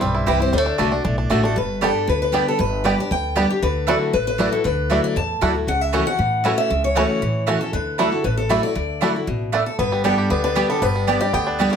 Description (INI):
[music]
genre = bluegrass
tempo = 233 BPM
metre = 4/4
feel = straight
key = unclear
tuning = A4 = 440 Hz
[part]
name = picked acoustic archtop guitar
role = melody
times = 0.0-11.8 s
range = F#4 to A5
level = -23 LUFS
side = left 2 dB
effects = none
[part]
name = picked steel-string acoustic guitar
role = accompaniment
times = 0.0-11.8 s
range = G2 to G4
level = -23 LUFS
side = left 2 dB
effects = none
[part]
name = bluegrass banjo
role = arpeggios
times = 0.0-11.8 s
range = G3 to G4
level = -25 LUFS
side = right 2 dB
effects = none
[part]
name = upright bass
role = bass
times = 0.0-11.7 s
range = G1 to A2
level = -25 LUFS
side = equal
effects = none
[part]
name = mandolin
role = stabs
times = 0.3-11.7 s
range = A3 to A5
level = -23 LUFS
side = right 7 dB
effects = none
[sound]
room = moderate studio reverb, RT60 0.7 s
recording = none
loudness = -17 LUFS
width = side -7 dB against mid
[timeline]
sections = 0.0-1.6 A section; 1.6-9.8 B section; 9.8-11.8 B section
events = none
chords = 0.0 C; 0.5 D; 1.6 G; 3.6 Dadd9; 5.7 A6/C#; 7.7 Dadd9; 9.8 G